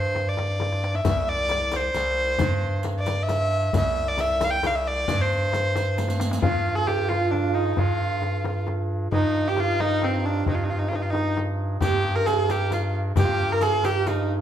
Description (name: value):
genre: Persian modal ensemble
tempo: 89 BPM (dotted quarters)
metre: 6/8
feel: straight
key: C dastgah mahur, G dastgah shur from 6.4 s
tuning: A4 = 439 Hz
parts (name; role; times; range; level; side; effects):
- bright kamancheh; melody; 0.0-14.3 s; C4 to G5; -25 LUFS; equal; none
- growling FM bass; bass; 0.0-14.4 s; C2 to G2; -27 LUFS; equal; none
- frame drum; percussion; 0.1-14.2 s; none; -31 LUFS; left 4 dB; none
- tombak; percussion; 0.2-14.2 s; none; -30 LUFS; left 1 dB; none
- riq; percussion; 1.0-6.4, 11.8-14.2 s; none; -37 LUFS; right 1 dB; none
- santur; second line; 6.4-14.4 s; C4 to Bb4; -28 LUFS; right 7 dB; none
room: moderate recital hall reverb, RT60 1.5 s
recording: minimal, uncompressed stereo recording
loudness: -21 LUFS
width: side -10 dB against mid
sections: 0.0-6.4 A section; 6.4-14.4 B section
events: drum fill 0.6-1.1, 6.0-6.4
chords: none